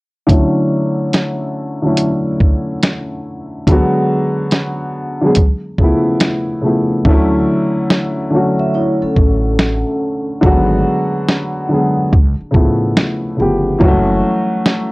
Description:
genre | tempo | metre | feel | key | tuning
lo-fi hip hop | 71 BPM | 4/4 | swing 65% on 16ths | D major | A4 = 440 Hz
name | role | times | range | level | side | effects
dark upright piano | accompaniment | 0.3-14.9 s | C#3 to G#4 | -15 LUFS | equal | cassette tape, low-pass filter
lo-fi sampler-style drum kit | drums | 0.3-14.9 s | hi-hat, kick drum, snare drum | -12 LUFS | equal | none
upright bass | bass | 7.1-14.2 s | F#1 to D2 | -19 LUFS | equal | transformer saturation
vibraphone with soft mallets | second line | 8.6-10.2 s | C#4 to E5 | -20 LUFS | equal | analog delay
room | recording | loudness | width
light reverb | dry, gritty hardware recording, transformer saturation, cassette tape | -12 LUFS | side -23 dB against mid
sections
0.3-7.0 A section; 7.0-14.9 B section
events
filter sweep on upright piano 0.3-7.0; hi-hats muted 7.0-14.9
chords
0.3 Dmaj9; 3.7 G#m7b5; 5.4 C#7alt; 7.0 Dmaj9; 10.4 G#m7b5; 12.1 C#7alt; 13.8 F#m7

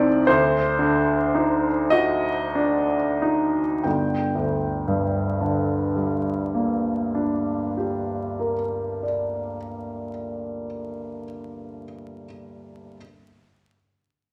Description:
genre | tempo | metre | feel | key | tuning
classical, romantic nocturne for solo piano | 29-42 BPM | 4/4 | rubato | G minor | A4 = 440 Hz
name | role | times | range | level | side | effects
clear baby grand piano | solo | 0.0-13.0 s | G1 to G5 | -24 LUFS | equal | none
room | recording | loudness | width
moderate recital hall reverb, RT60 1.4 s | vinyl crackle | -23 LUFS | mono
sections
0.0-3.8 A section; 3.8-10.8 B section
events
slowing down 0.0-3.8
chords
0.3 D7b9; 3.8 Gm

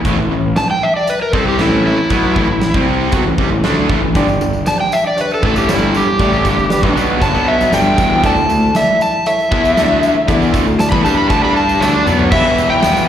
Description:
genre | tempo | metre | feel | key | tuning
classic rock | 117 BPM | 4/4 | straight | unclear | A4 = 438 Hz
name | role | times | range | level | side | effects
overdriven slide guitar | melody | 0.0-13.1 s | E4 to B5 | -16 LUFS | equal | slapback echo
crunchy overdriven guitar | riff | 0.0-13.1 s | E2 to G4 | -18 LUFS | left 8 dB | slapback echo
distorted electric guitar | riff | 0.0-13.1 s | E2 to G4 | -20 LUFS | right 11 dB | overdrive, slapback echo
fuzz fingered electric bass | bass | 0.0-13.0 s | E1 to G2 | -19 LUFS | right 1 dB | overdrive
big rock drum kit | drums | 0.0-12.9 s | crash cymbal, hi-hat, kick drum, ride cymbal, snare drum, toms | -20 LUFS | right 1 dB | none
clear grand piano | accompaniment | 4.2-13.1 s | D4 to G5 | -23 LUFS | right 1 dB | slapback echo
tambourine | percussion | 4.3-13.1 s | none | -35 LUFS | left 1 dB | none
room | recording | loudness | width
light reverb, studio reverb | live gig heard through the venue's PA, recital hall reverb | -11 LUFS | side -10 dB against mid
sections
0.0-12.3 A section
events
electric slide guitar solo 0.0-12.3; drum fill 11.8-12.3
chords
0.1 A5; 4.2 G5; 8.2 Dsus2; 12.3 Em

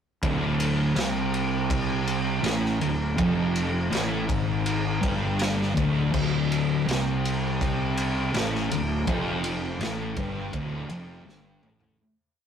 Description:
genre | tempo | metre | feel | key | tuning
stoner and doom metal | 82 BPM | 4/4 | straight | D minor | A4 = 441 Hz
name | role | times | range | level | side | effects
thick fuzz guitar | riff | 0.2-12.0 s | D2 to C3 | -26 LUFS | left 1 dB | distortion
fuzz fingered electric bass | bass | 0.2-12.0 s | D1 to C2 | -30 LUFS | right 1 dB | overdrive
raw garage drum kit | drums | 0.2-12.0 s | crash cymbal, kick drum, ride cymbal, snare drum, toms | -29 LUFS | equal | none
room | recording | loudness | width
light reverb | rough rehearsal-room recording, warm saturation | -23 LUFS | side -8 dB against mid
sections
0.2-12.0 riff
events
fade-out 9.1-12.0; drum fill 11.3-12.0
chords
0.2 Dm

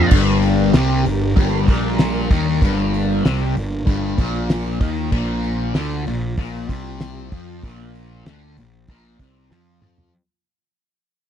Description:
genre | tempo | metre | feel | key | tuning
psychedelic rock | 96 BPM | 4/4 | straight | G minor | A4 = 441 Hz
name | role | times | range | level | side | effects
rich studio string section | sustained chords | 0.0-10.1 s | G3 to Bb4 | -30 LUFS | right 4 dB | none
fuzz guitar | riff | 0.0-10.1 s | G2 to F3 | -22 LUFS | left 2 dB | distortion, phaser
fuzz picked electric bass | bass | 0.0-10.1 s | G1 to F2 | -22 LUFS | equal | overdrive
damped 70s drum kit | drums | 0.1-10.1 s | crash cymbal, hi-hat, kick drum, snare drum, toms | -16 LUFS | equal | none
room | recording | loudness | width
little or no reverb | dry, close 1970s-style studio recording | -17 LUFS | side -9 dB against mid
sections
0.1-10.1 A section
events
fade-out 0.1-10.1; drum fill 9.5-10.1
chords
0.1 Gm; 5.1 Bb5

